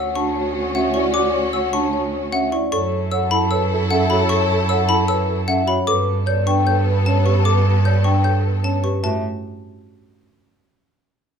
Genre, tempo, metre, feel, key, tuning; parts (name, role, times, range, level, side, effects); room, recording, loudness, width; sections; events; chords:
classical, minimalist pattern music; 152 BPM; 4/4; straight; A mixolydian; A4 = 437 Hz
vibraphone with soft mallets; melody; 0.0-9.2 s; A4 to A5; -24 LUFS; left 10 dB
mellow French horn; second line; 0.0-8.8 s; F#4 to B4; -27 LUFS; right 5 dB
rich studio string section; sustained chords; 0.0-8.8 s; B3 to A4; -26 LUFS; left 2 dB
marimba with soft mallets; arpeggios; 0.0-9.2 s; C#4 to C#5; -25 LUFS; right 7 dB
xylophone with plastic mallets; arpeggios; 0.0-9.2 s; F#5 to G6; -24 LUFS; left 3 dB
clear cello; bass; 0.0-9.2 s; D2 to A2; -21 LUFS; right 2 dB
moderate large studio reverb, RT60 0.8 s; minimal, uncompressed stereo recording; -16 LUFS; side -7 dB against mid
0.0-9.0 A section; 9.0-10.6 B section
0.0 Dmaj7; 2.7 F#m7; 5.9 Gadd9; 9.0 A5